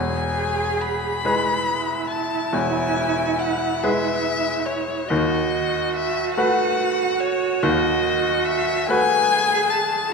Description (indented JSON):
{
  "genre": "classical, slow romantic movement for piano trio",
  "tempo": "47 BPM (dotted quarters)",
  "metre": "12/8",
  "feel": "rubato",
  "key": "unclear",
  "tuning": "A4 = 440 Hz",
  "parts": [
    { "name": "rich violin", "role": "melody", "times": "0.0-10.1 s", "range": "C#5 to B5", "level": "-23 LUFS", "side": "left 6 dB", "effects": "none" },
    { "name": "dark cello", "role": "second line", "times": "0.0-10.1 s", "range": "E4 to G#4", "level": "-24 LUFS", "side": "right 7 dB", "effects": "none" },
    { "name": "bright grand piano", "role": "accompaniment", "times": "0.0-10.1 s", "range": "E1 to B4", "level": "-24 LUFS", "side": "left 1 dB", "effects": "none" }
  ],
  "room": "wet scoring stage reverb, RT60 1.8 s",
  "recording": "minimal, uncompressed stereo recording",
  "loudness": "-19 LUFS",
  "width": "side -4 dB against mid",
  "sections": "0.0-10.1 A section",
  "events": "none",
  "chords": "0.0 E; 5.1 B7/D#"
}